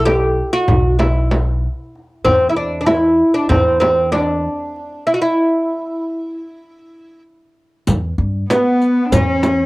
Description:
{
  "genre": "Turkish makam ensemble",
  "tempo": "192 BPM (eighths)",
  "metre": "9/8",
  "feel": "straight",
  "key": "E makam ussak",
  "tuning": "A4 = 440 Hz",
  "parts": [
    { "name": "oud", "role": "melody", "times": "0.0-9.7 s", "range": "B3 to G4", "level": "-15 LUFS", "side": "equal", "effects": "cassette tape" },
    { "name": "upright bass", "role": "bass", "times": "0.0-9.7 s", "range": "B1 to G2", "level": "-19 LUFS", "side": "equal", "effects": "transformer saturation" },
    { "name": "darbuka", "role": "percussion", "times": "0.1-4.8 s", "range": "none", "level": "-25 LUFS", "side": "left 1 dB", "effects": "none" },
    { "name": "frame drum", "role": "percussion", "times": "0.1-9.6 s", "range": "none", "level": "-20 LUFS", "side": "right 1 dB", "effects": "none" },
    { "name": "riq", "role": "percussion", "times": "7.9-9.6 s", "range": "none", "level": "-24 LUFS", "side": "left 3 dB", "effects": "none" },
    { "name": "growling clarinet", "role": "second line", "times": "8.5-9.7 s", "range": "B3 to C#4-29c", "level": "-18 LUFS", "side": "left 2 dB", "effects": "cassette tape" },
    { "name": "rich cello", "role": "second line", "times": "8.5-9.7 s", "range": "B3 to D4", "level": "-20 LUFS", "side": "equal", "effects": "cassette tape" }
  ],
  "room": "light reverb",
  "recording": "home recording on cassette",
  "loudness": "-14 LUFS",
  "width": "side -21 dB against mid",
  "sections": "0.0-7.9 A section; 7.9-9.7 B section",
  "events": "break 5.1-7.9",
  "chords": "none"
}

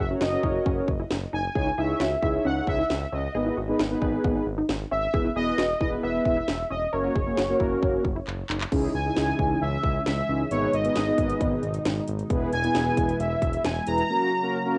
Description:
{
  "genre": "synth-pop",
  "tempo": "134 BPM",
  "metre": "4/4",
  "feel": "straight",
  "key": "C# dorian",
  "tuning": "A4 = 439 Hz",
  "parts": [
    { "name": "analog synth brass", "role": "melody", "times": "0.0-14.8 s", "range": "C#5 to A#5", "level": "-30 LUFS", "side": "equal", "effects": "chorus, cassette tape, tape echo, plate reverb" },
    { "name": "unison pluck", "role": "arpeggios", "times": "0.0-8.6 s", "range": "B3 to A#4", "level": "-36 LUFS", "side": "equal", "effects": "tape echo, plate reverb" },
    { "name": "smooth synth bass", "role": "bass", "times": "0.0-14.0 s", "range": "E1 to C#2", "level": "-34 LUFS", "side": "equal", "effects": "none" },
    { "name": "mellow synth brass", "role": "accompaniment", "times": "0.1-14.8 s", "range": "A#3 to C#5", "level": "-30 LUFS", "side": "equal", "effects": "chorus, plate reverb" },
    { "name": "house drum kit", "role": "drums", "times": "0.2-14.1 s", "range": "crash cymbal, handclaps, hi-hat, kick drum, snare drum", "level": "-31 LUFS", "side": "equal", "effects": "cassette tape" },
    { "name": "brassy analog pad", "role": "sustained chords", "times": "8.7-14.8 s", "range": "B2 to F#4", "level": "-35 LUFS", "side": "equal", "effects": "chorus, phaser" }
  ],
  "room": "moderate booth ambience, RT60 0.2 s",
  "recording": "home recording on cassette, nothing above 10.7 kHz",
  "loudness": "-25 LUFS",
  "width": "mono",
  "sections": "0.0-8.7 A section; 8.7-14.8 B section",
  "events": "drum fill 8.3-8.7; silent gap 14.1-14.8",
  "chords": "0.0 F#; 1.6 C#madd9; 3.3 G#m; 5.1 E; 6.9 F#; 8.7 C#madd9; 10.5 G#m; 12.3 E; 14.1 F#"
}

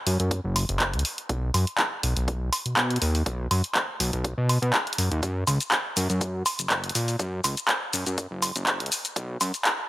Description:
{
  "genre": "filtered disco house",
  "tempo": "122 BPM",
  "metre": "4/4",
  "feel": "swing 53% on 16ths",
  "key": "F# major",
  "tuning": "A4 = 441 Hz",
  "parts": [
    { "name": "fat analog bass", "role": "bass", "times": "0.1-9.5 s", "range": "F#1 to B2", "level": "-26 LUFS", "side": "equal", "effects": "tube saturation, sidechain pumping, low-pass filter" },
    { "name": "punchy analog drum machine", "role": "drums", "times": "0.1-9.8 s", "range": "handclaps, hi-hat, shaker, woodblock", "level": "-25 LUFS", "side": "equal", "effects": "none" },
    { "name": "electronic kick drum", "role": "drums", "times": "0.3-9.8 s", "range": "none", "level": "-32 LUFS", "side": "equal", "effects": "high-pass filter on kick" }
  ],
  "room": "light reverb",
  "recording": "dry, gritty hardware recording, high-pass filter",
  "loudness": "-23 LUFS",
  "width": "side -16 dB against mid",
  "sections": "0.0-9.9 A section",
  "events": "build-up 0.0-9.9; filter sweep 0.0-9.9; filter sweep on analog synth bass 0.0-9.9",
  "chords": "none"
}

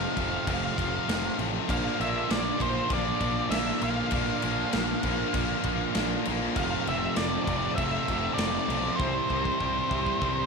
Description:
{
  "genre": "classic rock",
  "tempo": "98 BPM",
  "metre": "4/4",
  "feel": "straight",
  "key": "unclear",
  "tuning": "A4 = 443 Hz",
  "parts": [
    { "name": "octave-fuzz lead guitar", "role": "melody", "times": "0.0-10.5 s", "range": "C5 to F5", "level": "-31 LUFS", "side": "right 2 dB", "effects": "distortion, slapback echo" },
    { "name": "overdriven semi-hollow guitar", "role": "riff", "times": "0.0-10.5 s", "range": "F2 to F4", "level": "-34 LUFS", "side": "right 13 dB", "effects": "none" },
    { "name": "tight distorted guitar", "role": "riff", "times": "0.0-10.5 s", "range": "F2 to C4", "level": "-32 LUFS", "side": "left 14 dB", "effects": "distortion" },
    { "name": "fuzz picked electric bass", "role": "bass", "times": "0.0-10.4 s", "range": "F1 to C2", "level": "-34 LUFS", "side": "equal", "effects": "overdrive" },
    { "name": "big rock drum kit", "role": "drums", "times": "0.2-10.4 s", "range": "crash cymbal, kick drum, snare drum", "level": "-32 LUFS", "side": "equal", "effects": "none" },
    { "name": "overdriven electric guitar", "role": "riff", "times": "1.7-10.5 s", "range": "F2 to F4", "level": "-34 LUFS", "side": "equal", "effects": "spring reverb" }
  ],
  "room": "light reverb, small room ambience",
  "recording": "1960s-style stereo with parts hard left and right",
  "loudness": "-25 LUFS",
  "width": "side -4 dB against mid",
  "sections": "0.0-10.5 A section",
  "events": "drum fill 9.0-10.5",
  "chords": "0.0 F; 1.7 Bb; 6.6 F; 9.0 C"
}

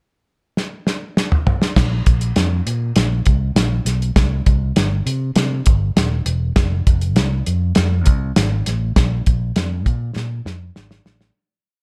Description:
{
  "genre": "uptempo 1960s-style soul",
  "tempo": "100 BPM",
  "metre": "4/4",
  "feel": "straight",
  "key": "unclear",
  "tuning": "A4 = 445 Hz",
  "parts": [
    { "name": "cloth-damped thuddy drum kit", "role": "drums", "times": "0.6-11.3 s", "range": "crash cymbal, hi-hat, kick drum, snare drum, toms", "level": "-19 LUFS", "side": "equal", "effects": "none" },
    { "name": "fingered electric bass", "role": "bass", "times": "1.8-11.3 s", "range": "Eb1 to C3", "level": "-22 LUFS", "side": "equal", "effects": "none" }
  ],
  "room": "light reverb",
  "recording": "none",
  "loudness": "-18 LUFS",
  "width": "mono",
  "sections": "0.0-1.8 pickup bar; 1.8-11.4 A section",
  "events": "drum fill 0.6-1.8, 10.2-11.4; fade-out 9.0-11.4",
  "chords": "none"
}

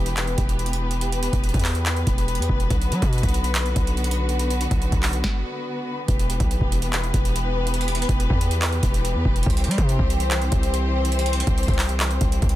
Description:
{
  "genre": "hip hop, trap",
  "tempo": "142 BPM",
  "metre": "4/4",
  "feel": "half-time",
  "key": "E minor",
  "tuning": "A4 = 441 Hz",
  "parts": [
    { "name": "rich studio string section", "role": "sustained chords", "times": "0.0-12.6 s", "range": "D3 to C5", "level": "-27 LUFS", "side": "left 1 dB", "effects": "none" },
    { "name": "hard-hitting 808-style bass", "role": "bass", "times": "0.0-12.6 s", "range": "E1 to G3", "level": "-23 LUFS", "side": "equal", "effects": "none" },
    { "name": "booming analog drum machine", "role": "drums", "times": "0.1-12.6 s", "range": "handclaps, hi-hat, kick drum, snare drum", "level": "-23 LUFS", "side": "equal", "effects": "overdrive" }
  ],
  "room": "little or no reverb",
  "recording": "dense, heavily limited modern master",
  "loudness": "-20 LUFS",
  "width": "side -14 dB against mid",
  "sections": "0.0-6.1 A section; 6.1-12.6 B section",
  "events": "stop 5.2-6.1",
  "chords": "0.0 Em; 2.7 Bm; 6.1 Em; 9.5 C"
}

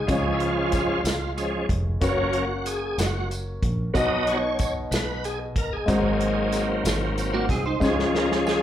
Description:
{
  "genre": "slow gospel",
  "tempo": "62 BPM (dotted quarters)",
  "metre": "6/8",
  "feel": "straight",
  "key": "F# major",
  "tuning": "A4 = 439 Hz",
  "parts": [
    { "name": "warm grand piano", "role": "accompaniment", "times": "0.0-8.6 s", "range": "G#2 to D#5", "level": "-26 LUFS", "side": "left 2 dB", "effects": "slapback echo" },
    { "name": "bright tonewheel organ", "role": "sustained chords", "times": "0.0-8.6 s", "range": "E#3 to D#5", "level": "-26 LUFS", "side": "right 1 dB", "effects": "slow rotary speaker, chorus vibrato" },
    { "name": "fingered electric bass", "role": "bass", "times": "0.0-8.6 s", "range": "E#1 to C#2", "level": "-30 LUFS", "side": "equal", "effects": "none" },
    { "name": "warm soul drum kit", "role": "drums", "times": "0.1-8.6 s", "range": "hi-hat, kick drum, snare drum", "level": "-28 LUFS", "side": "equal", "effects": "none" },
    { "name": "tambourine", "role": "percussion", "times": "0.1-8.6 s", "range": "none", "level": "-39 LUFS", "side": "right 3 dB", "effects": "none" },
    { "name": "clean electric guitar", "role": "second line", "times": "7.3-8.0 s", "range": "A#3 to B#4", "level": "-27 LUFS", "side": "right 4 dB", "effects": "ensemble chorus, slapback echo" }
  ],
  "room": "moderate club reverb, RT60 0.5 s",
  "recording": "live gig heard through the venue's PA, club reverb",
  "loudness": "-22 LUFS",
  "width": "side -11 dB against mid",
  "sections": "0.0-8.6 A section",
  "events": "tonewheel organ solo 0.0-8.6; drum fill 7.8-8.6",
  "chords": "0.1 C#; 2.0 F#; 4.0 B; 5.9 G#7; 7.8 C#"
}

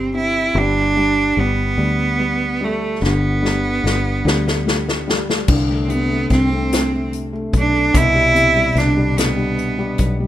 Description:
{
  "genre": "six-eight pop ballad",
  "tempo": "49 BPM (dotted quarters)",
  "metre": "6/8",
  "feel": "straight",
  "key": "unclear",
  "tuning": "A4 = 440 Hz",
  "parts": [
    { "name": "bright cello", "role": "melody", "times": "0.0-10.1 s", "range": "A3 to E4", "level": "-18 LUFS", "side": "right 3 dB", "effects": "slapback echo" },
    { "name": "felt-muted upright piano", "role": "accompaniment", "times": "0.0-10.3 s", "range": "B2 to G4", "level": "-22 LUFS", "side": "left 2 dB", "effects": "none" },
    { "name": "fingered electric bass", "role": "bass", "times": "0.0-10.3 s", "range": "G1 to D2", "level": "-21 LUFS", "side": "equal", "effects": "none" },
    { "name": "unplugged drum kit", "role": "drums", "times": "3.0-10.2 s", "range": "crash cymbal, hi-hat, kick drum, snare drum", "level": "-20 LUFS", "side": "left 2 dB", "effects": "none" }
  ],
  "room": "studio reverb",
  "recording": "rough home demo mix",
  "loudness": "-15 LUFS",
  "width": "side -12 dB against mid",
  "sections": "0.0-5.5 A section; 5.5-10.3 B section",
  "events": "drum fill 3.0-5.5",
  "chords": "0.0 C; 0.6 G; 5.5 D5/C; 7.9 G/C"
}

